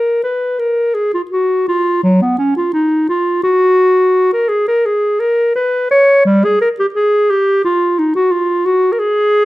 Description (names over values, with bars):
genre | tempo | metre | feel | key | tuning
classical, baroque-style fantasia for unaccompanied clarinet | 82-89 BPM | 4/4 | rubato | unclear | A4 = 440 Hz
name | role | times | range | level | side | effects
mellow clarinet | solo | 0.0-9.4 s | F#3 to C#5 | -11 LUFS | equal | none
room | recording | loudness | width
moderate stone room reverb, RT60 1.1 s | none | -11 LUFS | side -17 dB against mid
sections
0.0-9.4 A section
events
none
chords
none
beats
0.59 1.32 | 2.03 2.74 3.44 4.15 | 4.86 5.57 6.26 6.96 | 7.65 8.33 9.01